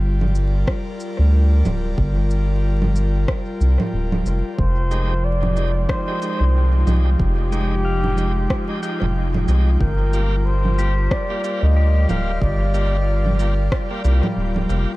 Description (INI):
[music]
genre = ambient dub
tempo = 92 BPM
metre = 4/4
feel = swing 58% on 16ths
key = unclear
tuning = A4 = 436 Hz
[part]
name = airy breathy pad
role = sustained chords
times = 0.0-15.0 s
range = F3 to G5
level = -27 LUFS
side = left 1 dB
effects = chorus
[part]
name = round analog bass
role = bass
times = 0.0-14.9 s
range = D1 to D2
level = -17 LUFS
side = equal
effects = none
[part]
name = electronic congas, shaker and rim click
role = drums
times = 0.2-14.8 s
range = none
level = -27 LUFS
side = right 2 dB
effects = overdrive, dub echo
[part]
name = electronic kick drum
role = drums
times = 0.7-13.9 s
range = none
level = -23 LUFS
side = equal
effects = overdrive
[part]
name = trumpet with bucket mute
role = melody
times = 4.6-14.7 s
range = G4 to F5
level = -27 LUFS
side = equal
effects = dub echo
[part]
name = bright tonewheel organ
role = stabs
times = 4.9-14.9 s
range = Ab3 to G4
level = -31 LUFS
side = right 2 dB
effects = overdrive, fast rotary speaker, vintage 12-bit sampler grit, dub echo
[part]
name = pedal steel guitar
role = arpeggios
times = 7.5-15.0 s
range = G3 to G5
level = -31 LUFS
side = left 4 dB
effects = vintage 12-bit sampler grit, dub echo
[sound]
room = digital ambience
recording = dark, warm production, vinyl crackle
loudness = -17 LUFS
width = side -19 dB against mid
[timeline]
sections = 0.0-15.0 A section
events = none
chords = 0.0 Gm7; 4.6 Fm9; 9.8 Gm7